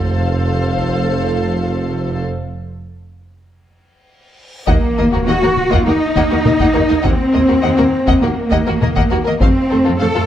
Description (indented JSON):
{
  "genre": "cinematic, epic orchestral film score",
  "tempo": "101 BPM",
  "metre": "4/4",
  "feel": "straight",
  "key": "unclear",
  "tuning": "A4 = 444 Hz",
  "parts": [
    { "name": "warm symphonic violin section", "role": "melody", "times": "0.0-10.2 s", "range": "A4 to Gb5", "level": "-24 LUFS", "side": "left 4 dB", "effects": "none" },
    { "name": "warm symphonic violin section", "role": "second line", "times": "0.0-10.2 s", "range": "F4 to Eb5", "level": "-25 LUFS", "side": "left 4 dB", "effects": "none" },
    { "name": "rich symphonic viola section", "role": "accompaniment", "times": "0.0-10.2 s", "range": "A3 to A4", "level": "-23 LUFS", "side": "right 2 dB", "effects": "none" },
    { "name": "dark French horn section", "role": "sustained chords", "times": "0.0-10.3 s", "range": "A3 to A4", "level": "-20 LUFS", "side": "left 3 dB", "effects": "none" },
    { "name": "mellow tuba", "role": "bass", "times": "0.0-10.1 s", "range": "F1 to Eb2", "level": "-24 LUFS", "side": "right 3 dB", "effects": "none" },
    { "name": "rich symphonic cello section", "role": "bass", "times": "0.0-10.3 s", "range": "F2 to A4", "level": "-19 LUFS", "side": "right 2 dB", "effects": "none" },
    { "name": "warm studio double bass section", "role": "bass", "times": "0.0-10.2 s", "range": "F1 to F2", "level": "-21 LUFS", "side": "right 2 dB", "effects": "none" },
    { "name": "taiko ensemble", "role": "drums", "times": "0.8-1.0, 4.7-10.0 s", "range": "none", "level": "-19 LUFS", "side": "equal", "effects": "none" },
    { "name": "reverse cymbal and sub drop", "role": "sound effects", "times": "4.5-7.0 s", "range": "none", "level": "-26 LUFS", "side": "equal", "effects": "none" }
  ],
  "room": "light reverb",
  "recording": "none",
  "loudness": "-13 LUFS",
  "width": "side -11 dB against mid",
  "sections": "0.0-4.7 A section; 4.7-10.3 B section",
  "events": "break 2.3-4.7; reverse cymbal 4.5; impact 4.7-7.0",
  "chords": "0.0 F; 4.7 Ebm; 9.4 F"
}